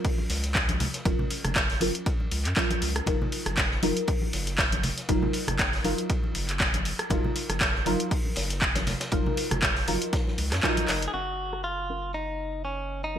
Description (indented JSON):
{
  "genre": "deep house",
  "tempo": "119 BPM",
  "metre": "4/4",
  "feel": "swing 55% on 16ths",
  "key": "F# major",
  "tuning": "A4 = 440 Hz",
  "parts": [
    { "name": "deep mellow chord stab", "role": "stabs", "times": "0.0-13.2 s", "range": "F#3 to E#5", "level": "-31 LUFS", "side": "equal", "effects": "chorus, sidechain pumping, ping-pong delay" },
    { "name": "electronic kick drum", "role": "drums", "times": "0.0-10.7 s", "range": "none", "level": "-28 LUFS", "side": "equal", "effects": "none" },
    { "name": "punchy analog drum machine", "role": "drums", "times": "0.0-11.6 s", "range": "crash cymbal, handclaps, hi-hat, rim click", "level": "-28 LUFS", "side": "equal", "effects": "low-pass filter on hats, low-pass filter on snare, low-pass filter on cymbals, gated reverb" },
    { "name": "vintage drum kit", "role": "drums", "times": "0.0-11.1 s", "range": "hi-hat, ride cymbal, snare drum", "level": "-38 LUFS", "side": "equal", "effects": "high-pass filter on hats, high-pass filter on cymbals, high-pass filter on snare, high-pass filter on room, gated reverb" },
    { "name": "congas", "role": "percussion", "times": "0.2-10.9 s", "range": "none", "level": "-35 LUFS", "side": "left 2 dB", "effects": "none" },
    { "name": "round analog bass", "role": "bass", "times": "0.3-13.2 s", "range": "F#1 to F#2", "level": "-32 LUFS", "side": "equal", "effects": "sidechain pumping" },
    { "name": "direct-recorded clean electric guitar", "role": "melody", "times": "10.6-13.2 s", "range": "C#4 to G#4", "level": "-31 LUFS", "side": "equal", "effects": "none" }
  ],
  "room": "light reverb, small room ambience",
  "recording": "bright 1980s-style digital production",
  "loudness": "-24 LUFS",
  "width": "side -9 dB against mid",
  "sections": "0.0-11.1 A section; 11.1-13.2 B section",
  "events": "filter sweep on synth stab 0.0-11.1; drum fill 10.9",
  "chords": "0.0 F#maj7; 3.1 D#madd9/F#; 11.1 F#maj7",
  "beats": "0.05 0.55 | 1.05 1.56 2.06 2.57 | 3.07 3.58 4.08 4.58 | 5.09 5.59 6.10 6.60 | 7.11 7.61 8.11 8.62 | 9.12 9.63 10.13 10.63 | 11.14 11.64 12.15 12.65 | 13.16"
}